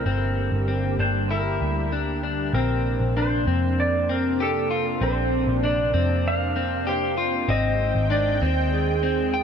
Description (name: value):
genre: dream pop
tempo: 97 BPM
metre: 4/4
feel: straight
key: unclear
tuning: A4 = 440 Hz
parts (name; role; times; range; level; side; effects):
- clean lap steel guitar; melody; 0.0-9.4 s; Ab4 to F5; -26 LUFS; right 2 dB; digital delay
- lush unison pad; sustained chords; 0.0-9.4 s; C3 to G5; -29 LUFS; right 1 dB; chorus
- clean electric guitar; arpeggios; 0.0-9.4 s; C4 to G5; -27 LUFS; left 5 dB; lush chorus, digital delay
- vintage muted picked electric bass; bass; 0.0-9.4 s; G1 to F2; -25 LUFS; equal; none
room: light reverb, digital ambience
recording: none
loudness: -21 LUFS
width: side -7 dB against mid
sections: 0.0-2.5 A section; 2.5-9.4 B section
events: none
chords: 0.1 Gm; 2.5 Bbadd9; 7.5 Abmaj7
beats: | 0.07 0.68 1.30 1.92 | 2.54 3.16 3.78 4.39 | 5.01 5.63 6.25 6.87 | 7.49 8.11 8.72 9.34